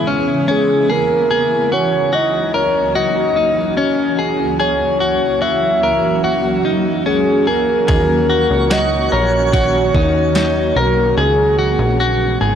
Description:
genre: dream pop.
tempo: 73 BPM.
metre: 4/4.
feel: straight.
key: F# mixolydian.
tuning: A4 = 445 Hz.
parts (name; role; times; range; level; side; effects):
granular cloud pad; sustained chords; 0.0-12.6 s; C#2 to F#4; -20 LUFS; right 3 dB; built-in reverb, shimmer reverb.
clean electric guitar; arpeggios; 0.0-12.6 s; C#4 to A#4; -18 LUFS; left 3 dB; wide subtle chorus, analog delay, shimmer reverb.
soft octave-layered synth lead; melody; 0.5-12.0 s; G#4 to E5; -17 LUFS; equal; chorus, analog delay, shimmer reverb.
plucky analog bass; bass; 7.9-12.6 s; G#1 to D#2; -18 LUFS; equal; none.
detuned 8-bit digital drum machine; drums; 7.9-10.5 s; kick drum, ride cymbal, snare drum, tambourine; -19 LUFS; equal; none.
twinkling granular texture; texture; 8.4-9.8 s; C#5 to G#5; -28 LUFS; right 3 dB; built-in reverb, analog delay, shimmer reverb.
room: moderate plate reverb, RT60 1.8 s, digital ambience.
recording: dry, gritty hardware recording, transformer saturation.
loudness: -13 LUFS.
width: side -8 dB against mid.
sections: 0.0-12.6 A section.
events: none.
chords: 0.0 C#m7; 1.3 F#7/C#; 7.9 D#m7; 11.2 C#m7.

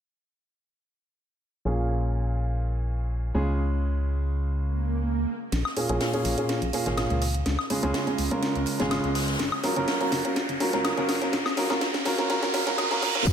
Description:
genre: piano house.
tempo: 124 BPM.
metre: 4/4.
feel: straight.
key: Bb minor.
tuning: A4 = 440 Hz.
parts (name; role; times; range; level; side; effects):
clear baby grand piano; riff; 1.7-13.2 s; Bb2 to Bb4; -27 LUFS; right 1 dB; sidechain pumping, low-pass filter, analog delay.
organ-like FM bass; bass; 1.7-13.3 s; Eb1 to Db2; -27 LUFS; equal; sidechain pumping.
swell, riser and reverse cymbal; sound effects; 4.7-13.3 s; none; -32 LUFS; right 3 dB; none.
house drum kit; drums; 5.5-13.3 s; crash cymbal, hi-hat, snare drum, woodblock; -29 LUFS; left 1 dB; overdrive, low-pass filter on snare, low-pass filter on hats, low-pass filter on perc, low-pass filter on cymbals, low-pass filter on room, analog delay.
swinging big-band drum kit; drums; 5.5-13.3 s; hi-hat, ride cymbal, snare drum; -37 LUFS; right 1 dB; sidechain pumping on cymbals, high-pass filter on cymbals, sidechain pumping on hats, high-pass filter on hats, high-pass filter on snare, high-pass filter on room, analog delay.
electronic kick drum; drums; 13.3 s; none; -21 LUFS; equal; overdrive.
tambourine; percussion; 13.3 s; none; -36 LUFS; left 6 dB; none.
room: moderate echo chamber reverb, RT60 2.0 s.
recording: echo-heavy mix, high-pass filter.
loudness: -24 LUFS.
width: side -8 dB against mid.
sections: 1.7-5.5 A section; 5.5-13.3 B section.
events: filter sweep on grand piano 1.7-5.5, 5.5-13.3; swell 4.7-5.5; build-up 5.5-13.3; drum fill 5.5-13.3; riser 5.5-13.3; filter sweep 5.5-13.3; reverse cymbal 12.3-13.3.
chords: 1.7 Bbm7; 3.3 Db; 5.5 Bbm7; 9.4 Gbmaj7; 11.3 Ebm.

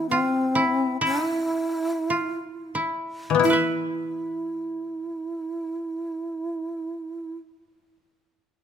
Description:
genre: japanese traditional, Japanese chamber music.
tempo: 40-68 BPM.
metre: 2/4.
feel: rubato.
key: unclear.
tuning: A4 = 440 Hz.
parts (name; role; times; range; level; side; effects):
breathy long shakuhachi; melody; 0.0-7.4 s; C4 to E4; -26 LUFS; right 1 dB; none.
koto; second line; 0.0-7.5 s; E4 to E5; -26 LUFS; equal; none.
koto; accompaniment; 0.0-7.4 s; E3 to E4; -23 LUFS; left 8 dB; none.
room: light reverb.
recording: close, detailed microphones.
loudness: -24 LUFS.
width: side -8 dB against mid.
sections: 0.0-3.4 A section; 3.4-8.6 B section.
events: slowing down 0.0-3.4.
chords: none.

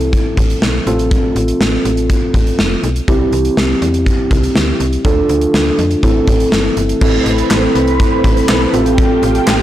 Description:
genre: synth-pop.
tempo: 122 BPM.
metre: 4/4.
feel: straight.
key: A minor.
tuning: A4 = 440 Hz.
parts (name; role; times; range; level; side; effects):
muted felt-like synth keys; accompaniment; 0.0-9.6 s; C4 to A4; -15 LUFS; right 1 dB; chorus.
slap-like FM bass; bass; 0.0-9.6 s; F1 to F2; -18 LUFS; equal; tube saturation.
gated 80s drum kit; drums; 0.0-9.6 s; crash cymbal, handclaps, hi-hat, kick drum, snare drum; -15 LUFS; equal; none.
ensemble organ-string; sustained chords; 7.0-9.6 s; A3 to B4; -18 LUFS; right 1 dB; phaser, ensemble chorus.
room: moderate lush hall reverb, RT60 2.1 s.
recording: blown-out, overdriven recording, overdrive.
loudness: -11 LUFS.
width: side -12 dB against mid.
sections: 0.0-7.0 A section; 7.0-9.6 B section.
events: none.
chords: 0.0 Amadd9; 0.9 F/A; 3.1 C; 5.0 Dm; 6.0 Am; 7.0 Amadd9; 8.7 Fadd9/A.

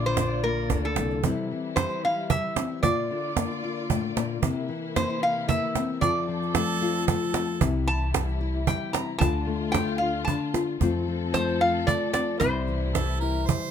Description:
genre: acoustic folk duo or small band.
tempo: 113 BPM.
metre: 3/4.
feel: straight.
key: C mixolydian.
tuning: A4 = 437 Hz.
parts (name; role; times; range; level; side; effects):
metal-body resonator slide guitar; melody; 0.0-13.7 s; A4 to Bb5; -28 LUFS; right 1 dB; none.
nylon-string guitar; accompaniment; 0.0-13.7 s; F2 to F4; -29 LUFS; left 6 dB; none.
dark studio string section; sustained chords; 0.0-13.7 s; C3 to D5; -36 LUFS; left 3 dB; none.
upright bass; bass; 0.0-1.2, 7.6-13.4 s; Bb1 to F2; -29 LUFS; left 1 dB; none.
cajon; percussion; 0.2-13.7 s; none; -26 LUFS; right 6 dB; none.
bright harmonica; second line; 6.5-7.7, 12.9-13.7 s; A4 to C5; -31 LUFS; right 7 dB; none.
room: light reverb.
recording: close, detailed microphones.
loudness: -23 LUFS.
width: side -8 dB against mid.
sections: 0.0-1.2 A section; 1.2-13.7 B section.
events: resonator guitar played with a steel bar solo 0.0-1.2.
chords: 0.0 Bb; 1.2 C; 2.8 Bb; 4.4 C7; 6.0 F; 7.6 C; 9.2 Dm; 10.8 F; 12.4 C.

